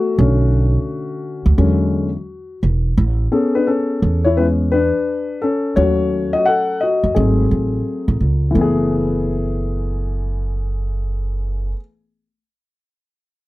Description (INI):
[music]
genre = hip hop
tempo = 86 BPM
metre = 4/4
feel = swing 64% on 16ths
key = F# minor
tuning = A4 = 444 Hz
[part]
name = dark concert grand piano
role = accompaniment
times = 0.0-11.8 s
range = D3 to F#5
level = -18 LUFS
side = left 2 dB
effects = none
[part]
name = upright bass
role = bass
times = 0.2-11.7 s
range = E1 to F#2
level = -17 LUFS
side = right 1 dB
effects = none
[sound]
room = light reverb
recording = dry, close 1970s-style studio recording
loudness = -15 LUFS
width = side -18 dB against mid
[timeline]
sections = 0.0-8.6 A section; 8.6-11.3 B section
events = grand piano solo 0.0-8.6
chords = 0.2 Bm9; 1.6 E13; 3.0 Amaj9; 5.8 D#m7b5; 7.2 G#7b9; 8.6 F#m11